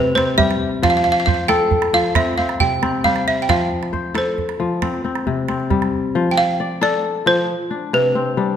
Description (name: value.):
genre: west african traditional, West African string and xylophone music.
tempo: 90 BPM (dotted quarters).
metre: 12/8.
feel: straight.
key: F lydian.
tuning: A4 = 440 Hz.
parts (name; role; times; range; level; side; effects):
balafon; melody; 0.0-8.6 s; B4 to G5; -18 LUFS; right 2 dB; none.
kora; arpeggios; 0.0-8.6 s; C3 to D5; -19 LUFS; left 4 dB; none.
calabash; percussion; 0.2-5.9 s; none; -23 LUFS; right 5 dB; none.
room: wet recital hall reverb, RT60 1.5 s.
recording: none.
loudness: -16 LUFS.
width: side -8 dB against mid.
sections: 0.0-6.2 A section; 6.2-8.6 B section.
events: balafon solo 6.2-8.6.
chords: 0.0 C; 0.8 F; 2.2 C5; 3.5 F; 4.8 C5; 6.2 F; 7.5 C5.